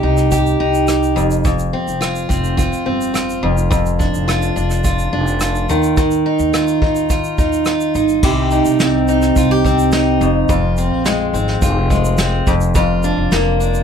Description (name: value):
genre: acoustic pop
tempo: 106 BPM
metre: 4/4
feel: straight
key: unclear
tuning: A4 = 439 Hz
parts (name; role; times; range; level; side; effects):
- picked steel-string acoustic guitar; accompaniment; 0.0-13.8 s; F2 to G4; -16 LUFS; equal; none
- upright bass; bass; 0.0-13.8 s; F1 to Eb2; -19 LUFS; equal; none
- vintage brush drum kit; drums; 0.2-13.8 s; crash cymbal, kick drum, rim click, shaker, snare drum; -20 LUFS; right 1 dB; none
room: light reverb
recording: none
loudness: -13 LUFS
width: side -7 dB against mid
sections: 0.0-8.2 A section; 8.2-13.8 B section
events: none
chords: 0.0 Cm; 1.2 F5; 3.4 Dm/F; 5.7 Ebsus2; 8.2 Cm; 10.2 Fm; 12.5 Bb/F